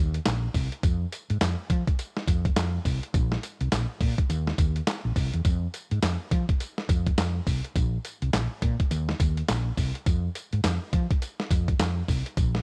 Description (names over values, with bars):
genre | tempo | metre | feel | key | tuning
R&B, new jack swing | 104 BPM | 4/4 | swing 61% on 16ths | unclear | A4 = 440 Hz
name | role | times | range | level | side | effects
woody fretless electric bass | bass | 0.0-12.6 s | Bb1 to F3 | -29 LUFS | equal | none
boom bap sampler-style drum kit | drums | 0.1-12.6 s | handclaps, hi-hat, kick drum, snare drum, tambourine | -28 LUFS | equal | cassette tape
room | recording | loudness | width
little or no reverb | home recording on cassette | -27 LUFS | mono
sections
0.0-12.6 A section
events
none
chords
none